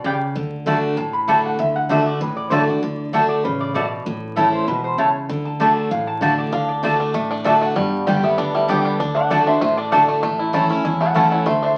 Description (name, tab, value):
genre	bluegrass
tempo	194 BPM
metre	4/4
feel	straight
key	D major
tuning	A4 = 440 Hz
part	lap resonator guitar	second line	0.0-11.8 s	A4 to B5	-26 LUFS	equal	none
part	picked steel-string acoustic guitar	accompaniment	0.0-11.7 s	E2 to G4	-24 LUFS	equal	none
part	mandolin	stabs	0.0-11.3 s	A3 to A5	-21 LUFS	equal	none
part	upright bass	bass	0.1-11.7 s	E1 to D2	-38 LUFS	equal	none
part	bluegrass banjo	arpeggios	6.5-11.8 s	G3 to E4	-24 LUFS	equal	none
room	wet studio reverb, RT60 0.7 s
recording	very old 78 rpm record, vinyl crackle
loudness	-19 LUFS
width	mono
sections	0.0-11.8 A section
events	resonator guitar played with a steel bar solo 0.0-11.8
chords	0.4 D; 4.1 A; 5.3 D; 7.8 G; 9.0 D; 10.2 A